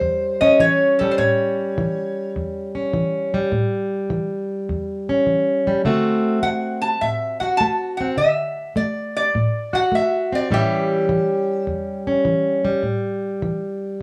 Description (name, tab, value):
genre	acoustic country blues, solo or duo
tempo	103 BPM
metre	4/4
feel	swing 67% on 8ths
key	A mixolydian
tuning	A4 = 441 Hz
part	lap resonator guitar	melody	0.0-2.3, 6.4-11.6 s	A4 to A5	-22 LUFS	equal	none
part	fingerpicked plugged-in steel-string acoustic guitar	accompaniment	0.0-14.0 s	E2 to G4	-22 LUFS	equal	none
room	wet booth ambience, RT60 0.3 s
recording	small room ambience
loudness	-21 LUFS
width	mono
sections	0.0-14.0 A section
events	none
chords	0.0 A7; 5.8 D7; 10.5 A7